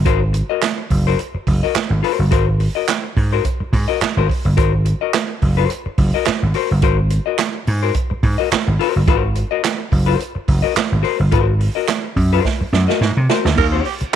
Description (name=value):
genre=funk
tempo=107 BPM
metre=4/4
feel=swing 56% on 16ths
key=unclear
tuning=A4 = 438 Hz
part: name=vintage slap bass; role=bass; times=0.0-14.0 s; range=Gb1 to C3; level=-16 LUFS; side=equal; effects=none
part: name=vintage hollow-body jazz guitar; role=accompaniment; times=0.1-14.2 s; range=Db4 to Eb5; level=-21 LUFS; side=left 14 dB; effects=none
part: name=swinging big-band drum kit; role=drums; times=0.1-14.1 s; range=crash cymbal, handclaps, hi-hat, kick drum, snare drum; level=-20 LUFS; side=right 4 dB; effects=none
part: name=growling tenor saxophone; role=second line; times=13.6-14.2 s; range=G4 to Bb4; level=-21 LUFS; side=right 14 dB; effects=none
room=small room ambience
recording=1960s-style stereo with parts hard left and right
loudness=-15 LUFS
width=side -10 dB against mid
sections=0.0-13.6 A section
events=drum fill 12.4-13.6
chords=0.0 Ab9; 13.6 Eb